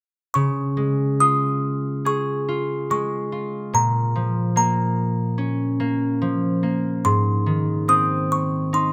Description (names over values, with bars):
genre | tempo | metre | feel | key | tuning
children's music, lullaby | 72 BPM | 4/4 | rubato | Db major | A4 = 440 Hz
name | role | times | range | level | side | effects
music box | melody | 0.3-8.9 s | Bb5 to Eb6 | -25 LUFS | equal | none
concert harp | accompaniment | 0.3-8.9 s | Ab2 to Ab4 | -24 LUFS | equal | none
room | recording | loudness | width
light reverb | close, detailed microphones | -22 LUFS | mono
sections
0.3-8.9 A section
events
none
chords
0.3 Dbadd9; 3.7 Bbm; 7.0 Ab